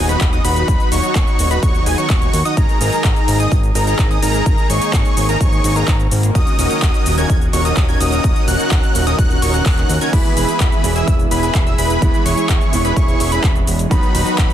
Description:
EDM, festival progressive house; 127 BPM; 4/4; straight; G# minor; A4 = 439 Hz
lush unison pad; sustained chords; 0.0-14.5 s; D#3 to G#4; -26 LUFS; equal; chorus, vintage 12-bit sampler grit, sidechain pumping
wide unison lead; arpeggios; 0.0-14.5 s; G#5 to G#6; -22 LUFS; left 1 dB; sidechain pumping, dub echo
dense compressed supersaw; riff; 0.0-14.5 s; C#4 to G#5; -21 LUFS; equal; sidechain pumping, dub echo
fat analog bass; bass; 0.0-14.5 s; D#1 to D#2; -20 LUFS; equal; sidechain pumping
big-room dance drum kit; drums; 0.1-14.5 s; crash cymbal, handclaps, hi-hat, shaker; -24 LUFS; equal; overdrive, studio ambience
electronic kick drum; drums; 0.2-14.5 s; -16 LUFS; equal; studio ambience
clear concert grand piano; accompaniment; 10.1-14.5 s; D#3 to E4; -22 LUFS; right 5 dB; sidechain pumping, dub echo
little or no reverb; dense, heavily limited modern master; -13 LUFS; side -11 dB against mid
0.0-14.5 A section
0.0 B/D#; 2.6 G#sus2; 6.4 D#m7; 10.1 E; 13.9 B/D#

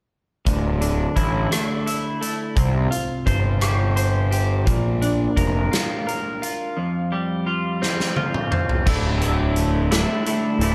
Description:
quiet-loud alternative rock; 57 BPM (dotted quarters); 6/8; straight; D minor; A4 = 438 Hz
twelve-string electric guitar; arpeggios; 0.5-10.7 s; D2 to C5; -26 LUFS; equal; lush chorus, digital delay
fuzz picked electric bass; bass; 0.5-5.7, 8.9-10.7 s; D1 to C2; -23 LUFS; equal; overdrive
big rock drum kit; drums; 0.5-10.7 s; crash cymbal, hi-hat, kick drum, rim click, snare drum, toms; -27 LUFS; equal
light reverb; -22 LUFS; mono
0.5-8.9 A section; 8.9-10.7 B section
drum fill 7.8-8.9
0.5 Dsus2; 2.6 Csus4; 4.7 Bb; 6.8 Fsus2; 8.9 Dsus2

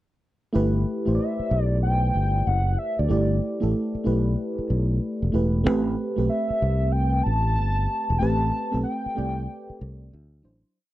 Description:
R&B; 94 BPM; 4/4; swing 63% on 16ths; G major; A4 = 440 Hz
mellow FM electric piano; accompaniment; 0.5-10.8 s; F#3 to D5; -26 LUFS; right 1 dB; chorus
fingered electric bass; bass; 0.6-10.6 s; E1 to D2; -23 LUFS; equal
hollow square lead; melody; 1.2-10.1 s; D5 to A5; -27 LUFS; equal; chorus
little or no reverb; dry, close 1970s-style studio recording; -21 LUFS; side -15 dB against mid
0.5-10.7 verse
fade-out 8.2-10.7
0.5 G69; 5.6 Am9; 10.1 D9

